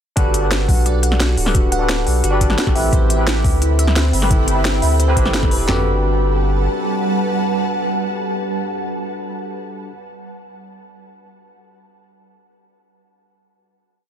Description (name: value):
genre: liquid drum and bass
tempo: 174 BPM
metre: 4/4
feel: straight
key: G major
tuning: A4 = 436 Hz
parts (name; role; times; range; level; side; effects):
- barky tine electric piano; accompaniment; 0.2-9.9 s; C4 to B4; -22 LUFS; left 1 dB; lush chorus, ping-pong delay
- harp-like synth pluck; arpeggios; 0.2-5.8 s; E4 to F#5; -26 LUFS; right 5 dB; chorus, tape echo
- warm sub bass; bass; 0.2-6.7 s; D1 to D2; -18 LUFS; equal; none
- breakbeat sampler-style drum kit; drums; 0.2-5.8 s; handclaps, kick drum, snare drum, toms; -17 LUFS; equal; studio ambience
- drum and bass drum kit; drums; 0.2-5.6 s; hi-hat, snare drum; -21 LUFS; equal; studio ambience
- ethereal airy pad; sustained chords; 3.7-9.2 s; G3 to B5; -22 LUFS; right 2 dB; ensemble chorus, built-in reverb, tremolo
room: little or no reverb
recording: dense, heavily limited modern master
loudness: -15 LUFS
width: side -9 dB against mid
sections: 0.2-5.7 drop; 5.7-8.4 final chord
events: drop 0.2-5.7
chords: 0.2 Gmaj9; 2.8 Am9; 5.7 Gmaj9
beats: | 0.17 0.51 0.86 1.20 | 1.55 1.89 2.24 2.58 | 2.93 3.27 3.62 3.96 | 4.31 4.65 5.00 5.34 | 5.68 6.03 6.37 6.72 | 7.06 7.41 7.75 8.10